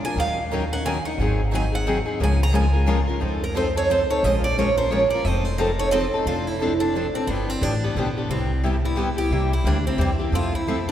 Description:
acoustic string swing (jazz manouche); 177 BPM; 3/4; swing 60% on 8ths; A4 = 440 Hz
picked steel-string acoustic guitar; melody; 0.0-10.9 s; B3 to Bb5; -25 LUFS; right 3 dB
picked steel-string acoustic guitar; accompaniment; 0.0-10.9 s; C3 to Bb4; -25 LUFS; left 3 dB
picked steel-string acoustic guitar; accompaniment; 0.2-10.8 s; C3 to Bb4; -32 LUFS; right 2 dB
upright bass; bass; 0.2-10.9 s; F1 to F2; -24 LUFS; equal
wet cathedral reverb, RT60 5.3 s; recorded in a church or concert hall; -20 LUFS; side -11 dB against mid
0.0-6.3 A section; 6.3-10.9 B section
steel-string acoustic guitar solo 0.0-6.3
0.2 Ebm9; 1.2 Ab7; 2.2 Db6; 3.2 F7; 4.2 Bbm7; 5.2 F7; 6.3 F6; 7.3 G7; 8.3 Cmaj7; 9.3 C7; 10.3 Fmaj7

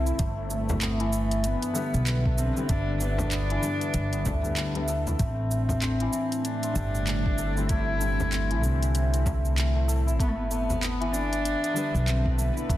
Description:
organic downtempo; 96 BPM; 4/4; swing 60% on 16ths; A4 = 441 Hz
felt-muted upright piano; accompaniment; 0.0-12.5 s; D3 to B4; -35 LUFS; left 3 dB; sidechain pumping, digital delay
bowed-like drone; sustained chords; 0.0-12.8 s; A2 to B4; -37 LUFS; equal; built-in reverb, sidechain pumping
santur; arpeggios; 0.0-12.8 s; E3 to A4; -33 LUFS; left 1 dB; digital delay
upright bass; bass; 0.0-12.8 s; G1 to D2; -27 LUFS; equal; tube saturation, sidechain pumping
organic electronic drum kit; drums; 0.1-12.8 s; cabasa, handclaps, hi-hat; -35 LUFS; right 1 dB; overdrive
electronic kick drum; drums; 0.2-12.8 s; -28 LUFS; equal; overdrive
warm cello; melody; 0.5-12.8 s; A3 to E4; -31 LUFS; left 1 dB; digital delay
frame drum; percussion; 0.7-10.8 s; -34 LUFS; left 1 dB
light reverb, studio reverb; dense, heavily limited modern master; -24 LUFS; side -14 dB against mid
0.0-12.8 A section
0.2 G

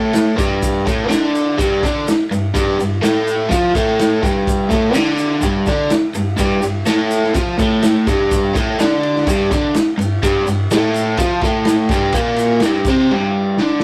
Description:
garage rock duo or trio; 125 BPM; 4/4; straight; G minor; A4 = 441 Hz
overdriven electric guitar; riff; 0.0-13.8 s; G2 to F4; -18 LUFS; equal
raw garage drum kit; drums; 0.1-13.8 s; kick drum, ride cymbal, snare drum; -22 LUFS; equal
tube shaker; percussion; 0.2-13.0 s; -38 LUFS; equal
light reverb; rough rehearsal-room recording, tube saturation; -16 LUFS; mono
0.0-13.8 A section
drum fill 13.6
0.0 G5

